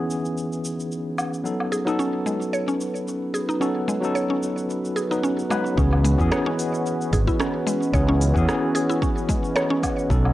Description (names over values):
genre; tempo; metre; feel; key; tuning
organic downtempo; 111 BPM; 4/4; swing 55% on 16ths; C# minor; A4 = 440 Hz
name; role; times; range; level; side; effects
barky tine electric piano; accompaniment; 0.0-10.3 s; E3 to B4; -26 LUFS; left 1 dB; medium stereo tremolo, sidechain pumping, tape echo
warm analog pad; sustained chords; 0.0-10.3 s; C#4 to D#5; -29 LUFS; equal; chorus, sidechain pumping
organic electronic drum kit; drums; 0.1-10.3 s; hi-hat, rim click, shaker, woodblock; -31 LUFS; equal; none
mallet-like synth pluck; arpeggios; 1.7-10.1 s; G#3 to C#5; -26 LUFS; equal; chorus, tape echo
fretless electric bass; bass; 5.8-10.3 s; G#1 to E2; -19 LUFS; equal; tube saturation, sidechain pumping
electronic kick drum; drums; 5.8-10.2 s; none; -25 LUFS; equal; overdrive
room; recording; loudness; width
light reverb, digital ambience; dry, gritty hardware recording, cassette tape; -20 LUFS; side -15 dB against mid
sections
0.0-5.8 A section; 5.8-10.3 B section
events
filter sweep on analog synth pad 0.0-5.8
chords
0.0 C#m7; 1.5 B7; 5.8 C#m7